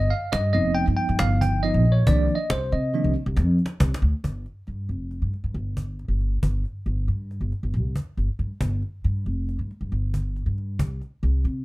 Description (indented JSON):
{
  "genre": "progressive instrumental, band music in an uneven meter",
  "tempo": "138 BPM",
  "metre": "5/4",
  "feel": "straight",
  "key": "unclear",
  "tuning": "A4 = 441 Hz",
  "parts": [
    { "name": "bell-like tine electric piano", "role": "accompaniment", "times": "0.0-3.1 s", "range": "Eb3 to G5", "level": "-24 LUFS", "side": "right 1 dB", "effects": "fast stereo tremolo, plate reverb" },
    { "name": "upright bass", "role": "bass", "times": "0.0-11.6 s", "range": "F1 to C3", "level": "-23 LUFS", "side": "equal", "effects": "none" },
    { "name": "cajon", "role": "drums", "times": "0.1-11.5 s", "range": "none", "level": "-26 LUFS", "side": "equal", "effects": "none" }
  ],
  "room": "little or no reverb",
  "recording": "dark, warm production",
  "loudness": "-22 LUFS",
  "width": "side -19 dB against mid",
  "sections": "0.0-4.2 A section; 4.2-11.6 B section",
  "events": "tine electric piano solo 0.0-4.2; drum fill 3.4-4.2",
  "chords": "0.0 G7alt; 2.1 Cm11; 4.2 N.C.",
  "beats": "0.34 0.77 1.20 1.64 | 2.07 2.51 2.94 3.38 3.81 | 4.25 4.68 5.12 5.55 5.99 | 6.43 6.86 7.30 7.74 8.17 | 8.61 9.05 9.48 9.92 10.36 | 10.79 11.23"
}